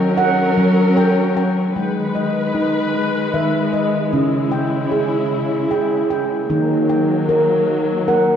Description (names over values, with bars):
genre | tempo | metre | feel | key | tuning
world meditative, meditative tuned percussion | 51 BPM (dotted quarters) | 6/8 | straight | G# minor | A4 = 440 Hz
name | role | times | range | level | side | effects
warm studio string section | sustained chords | 0.0-8.4 s | C#3 to B4 | -19 LUFS | left 2 dB | none
handpan | arpeggios | 0.0-8.4 s | C#3 to G5 | -17 LUFS | right 1 dB | tape echo
room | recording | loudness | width
wet scoring stage reverb, RT60 1.8 s, small room ambience | dark, warm production | -15 LUFS | side -8 dB against mid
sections
0.0-1.8 A section; 1.8-8.4 B section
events
none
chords
0.0 F#; 1.8 G#m; 4.1 C#m; 6.5 D#m